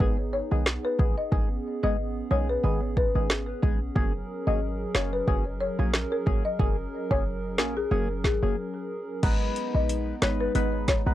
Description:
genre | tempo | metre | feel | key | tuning
dancehall | 91 BPM | 4/4 | swing 56% on 16ths | G# minor | A4 = 440 Hz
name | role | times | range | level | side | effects
percussive organ stab | accompaniment | 0.0-11.1 s | D#3 to B4 | -30 LUFS | equal | chorus, phaser
hollow soft pad | sustained chords | 0.0-11.1 s | F#3 to A#4 | -34 LUFS | right 1 dB | chorus, sidechain pumping
short 808-style bass | bass | 0.0-11.1 s | F#1 to B1 | -28 LUFS | equal | none
afro-pop drum kit | drums | 0.0-11.1 s | crash cymbal, hi-hat, kick drum, snare drum | -26 LUFS | equal | none
folk marimba with medium mallets | melody | 0.3-11.0 s | G#4 to D#5 | -31 LUFS | left 3 dB | tape echo
room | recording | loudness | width
little or no reverb | dry, gritty hardware recording, transformer saturation, cassette tape | -24 LUFS | side -14 dB against mid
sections
0.0-9.2 A section; 9.2-11.1 B section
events
break 8.6-9.2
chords
0.0 G#m; 4.0 F#add9; 9.2 G#m

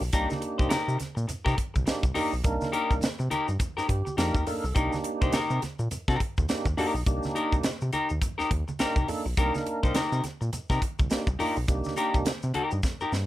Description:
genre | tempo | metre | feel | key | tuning
funk | 104 BPM | 4/4 | swing 60% on 16ths | C minor | A4 = 435 Hz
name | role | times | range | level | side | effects
clean electric guitar | accompaniment | 0.0-13.2 s | Eb4 to C5 | -29 LUFS | left 3 dB | none
tonewheel organ | stabs | 0.0-12.3 s | Bb3 to Bb4 | -31 LUFS | right 2 dB | overdrive, chorus vibrato, slow rotary speaker
round analog bass | bass | 0.0-13.3 s | B1 to C3 | -29 LUFS | equal | none
tube shaker | percussion | 0.0-13.3 s | none | -46 LUFS | left 3 dB | none
crisp fusion drum kit | drums | 0.1-13.3 s | hi-hat, kick drum, snare drum | -29 LUFS | equal | none
congas | percussion | 0.3-13.0 s | none | -38 LUFS | right 2 dB | none
room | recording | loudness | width
little or no reverb | none | -25 LUFS | side -15 dB against mid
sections
0.0-13.3 A section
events
tonewheel organ fill 3.6-4.8; drum fill 12.8-13.3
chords
0.0 Cm7

